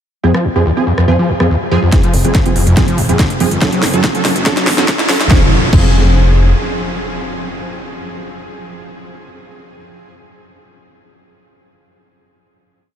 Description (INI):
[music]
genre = driving peak-time techno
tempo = 142 BPM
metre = 4/4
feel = straight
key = F minor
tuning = A4 = 441 Hz
[part]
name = screaming distorted acid line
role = riff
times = 0.2-5.8 s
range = F1 to Gb3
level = -18 LUFS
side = equal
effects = distortion, chorus, sidechain pumping, ping-pong delay
[part]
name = rave stab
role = stabs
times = 0.2-10.1 s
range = F3 to A4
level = -18 LUFS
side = right 2 dB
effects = chorus, built-in reverb, sidechain pumping, ping-pong delay
[part]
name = techno drum kit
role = drums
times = 0.3-5.9 s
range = crash cymbal, hi-hat, rim click, snare drum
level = -19 LUFS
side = equal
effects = sidechain pumping on hats, sidechain pumping on cymbals
[part]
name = electronic kick drum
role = drums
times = 1.9-5.9 s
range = none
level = -14 LUFS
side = equal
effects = none
[part]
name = riser and impact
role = sound effects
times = 3.8-9.8 s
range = none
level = -22 LUFS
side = right 1 dB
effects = none
[part]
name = dark detuned saw bass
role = bass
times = 2.1-6.5 s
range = Eb1 to Ab1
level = -14 LUFS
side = equal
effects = sidechain pumping
[sound]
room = moderate huge ambient reverb, RT60 7.6 s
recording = dreamy mix soaked in reverb, high-pass filter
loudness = -10 LUFS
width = side -9 dB against mid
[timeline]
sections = 0.2-1.9 intro; 1.9-5.3 build; 5.3-8.7 final chord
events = filter sweep on synth stab 0.2-1.9, 1.9-5.3; build-up 1.9-5.3; drum fill 1.9-5.3; filter sweep on acid bass 1.9-5.3; filter sweep 1.9-5.3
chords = 0.2 Fm; 3.6 Gbm; 5.3 Fm